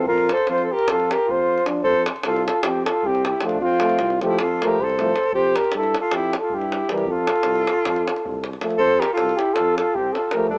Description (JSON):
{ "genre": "balkan folk, Balkan brass band", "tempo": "310 BPM (eighths)", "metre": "9/8", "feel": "straight", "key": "F major", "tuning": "A4 = 441 Hz", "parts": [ { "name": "dark flugelhorn", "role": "melody", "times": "0.0-10.6 s", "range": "F4 to C5", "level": "-20 LUFS", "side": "equal", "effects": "cassette tape" }, { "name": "warm alto saxophone", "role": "second line", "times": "0.0-10.6 s", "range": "C4 to A4", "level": "-24 LUFS", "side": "equal", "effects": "cassette tape" }, { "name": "mellow euphonium", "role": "accompaniment", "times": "0.0-10.5 s", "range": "E3 to F3", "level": "-29 LUFS", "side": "equal", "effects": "cassette tape" }, { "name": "warm French horn", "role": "accompaniment", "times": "0.0-10.5 s", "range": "G3 to D4", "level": "-25 LUFS", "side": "equal", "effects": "cassette tape" }, { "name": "mellow tuba", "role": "bass", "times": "0.1-10.6 s", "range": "C2 to G2", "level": "-28 LUFS", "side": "equal", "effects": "none" }, { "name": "davul", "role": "percussion", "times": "0.1-10.6 s", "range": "none", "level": "-29 LUFS", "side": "equal", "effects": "none" } ], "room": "moderate spring reverb, RT60 1.4 s, studio ambience", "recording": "home recording on cassette, small speaker sound", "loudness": "-18 LUFS", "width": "side -39 dB against mid", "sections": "0.0-8.8 A section; 8.8-10.6 B section", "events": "none", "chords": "0.1 Fadd9; 1.8 F; 5.3 Fmaj9; 7.1 F", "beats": "| 0.07 0.26 0.46 0.65 0.85 1.04 1.24 1.44 1.63 | 1.82 2.02 2.21 2.41 2.60 2.80 2.99 3.19 3.38 | 3.58 3.77 3.96 4.16 4.35 4.55 4.74 4.93 5.13 | 5.32 5.51 5.71 5.90 6.09 6.29 6.48 6.67 6.87 | 7.06 7.25 7.44 7.64 7.83 8.02 8.21 8.40 8.60 | 8.79 8.98 9.18 9.37 9.56 9.75 9.94 10.13 10.33 | 10.52" }